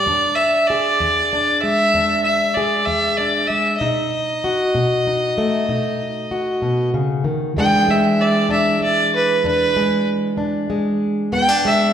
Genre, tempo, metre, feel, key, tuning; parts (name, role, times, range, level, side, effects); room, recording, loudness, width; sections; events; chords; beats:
acoustic country blues, solo or duo; 64 BPM (dotted quarters); 12/8; straight; E mixolydian; A4 = 440 Hz
clear fiddle; melody; 0.0-11.9 s; B4 to G5; -17 LUFS; right 1 dB
fingerpicked plugged-in steel-string acoustic guitar; accompaniment; 0.0-11.9 s; E2 to G#4; -20 LUFS; left 1 dB
wet scoring stage reverb, RT60 1.8 s; recorded in a church or concert hall; -16 LUFS; side -9 dB against mid
0.0-7.6 A section; 7.6-11.9 B section
fiddle solo 7.6-11.9
0.1 E7; 3.8 B7; 7.6 E7
| 0.06 1.00 1.93 2.87 | 3.81 4.75 5.68 6.62 | 7.56 8.50 9.44 10.38 | 11.33